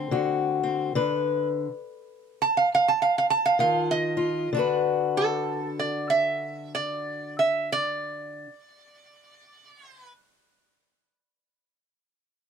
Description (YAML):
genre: acoustic country blues, solo or duo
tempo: 63-73 BPM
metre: 4/4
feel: swing 61% on 8ths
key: D mixolydian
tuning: A4 = 442 Hz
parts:
  - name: fingerpicked steel-string acoustic guitar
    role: accompaniment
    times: 0.0-8.5 s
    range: D3 to B4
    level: -27 LUFS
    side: left 5 dB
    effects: none
  - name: lap resonator guitar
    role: melody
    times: 2.4-10.1 s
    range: A4 to A5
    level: -23 LUFS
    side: right 3 dB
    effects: none
room: wet booth ambience, RT60 0.2 s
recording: none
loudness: -23 LUFS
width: side -7 dB against mid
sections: 0.0-4.5 A section; 4.5-8.3 B section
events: slowing down 0.0-4.5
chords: 0.0 D7; 1.0 Dm6; 3.6 Ebsus2; 4.5 D6